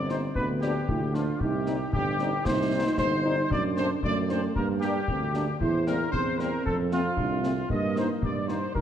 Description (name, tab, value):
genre	military-style march for wind band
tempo	114 BPM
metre	2/4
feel	straight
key	unclear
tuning	A4 = 444 Hz
part	warm trumpet section	melody	0.0-8.8 s	F4 to Eb5	-30 LUFS	left 1 dB	none
part	dark euphonium	second line	0.0-8.8 s	A3 to E4	-32 LUFS	right 2 dB	none
part	warm tuba	bass	0.0-8.8 s	G1 to G2	-30 LUFS	right 2 dB	none
part	warm French horn section	accompaniment	0.1-8.6 s	Eb3 to Eb4	-35 LUFS	left 4 dB	none
part	concert snare drum and concert bass drum	drums	0.1-8.8 s	none	-33 LUFS	left 2 dB	none
room	moderate concert hall reverb, RT60 2.2 s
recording	dark, warm production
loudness	-24 LUFS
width	side -9 dB against mid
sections	0.0-8.8 A section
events	none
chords	0.4 Bdim/D; 1.4 Cm; 3.5 D7/F#; 4.6 Gm; 5.6 C7/E; 6.7 F; 7.7 Eb/G